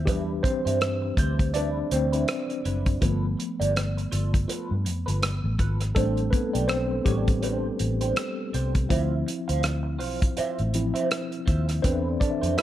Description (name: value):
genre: lush 1970s-style soul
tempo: 82 BPM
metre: 4/4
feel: swing 58% on 16ths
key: unclear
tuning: A4 = 440 Hz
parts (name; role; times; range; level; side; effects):
- tine electric piano; accompaniment; 0.0-12.6 s; E3 to E5; -29 LUFS; left 1 dB; overdrive, fast stereo tremolo
- vintage muted fingered electric bass; bass; 0.0-12.6 s; F#1 to G2; -27 LUFS; equal; none
- electric guitar through a small old amp; riff; 0.1-12.6 s; D4 to F5; -32 LUFS; right 4 dB; wah, spring reverb
- warm soul drum kit; drums; 0.1-12.6 s; hi-hat, kick drum, rim click; -27 LUFS; equal; none
- vibraphone with soft mallets; texture; 6.3-12.6 s; A4 to E5; -37 LUFS; left 1 dB; none
room: small room ambience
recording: dark, warm production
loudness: -23 LUFS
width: side -12 dB against mid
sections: 0.0-12.6 A section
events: tine electric piano solo 0.0-12.6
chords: 0.1 Cmaj9; 3.0 G9; 6.0 Am11; 8.9 Dm9; 11.8 Cmaj9/E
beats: | 0.08 0.81 1.55 2.29 | 3.02 3.76 4.49 5.23 | 5.96 6.70 7.43 8.17 | 8.90 9.64 10.37 11.11 | 11.84 12.58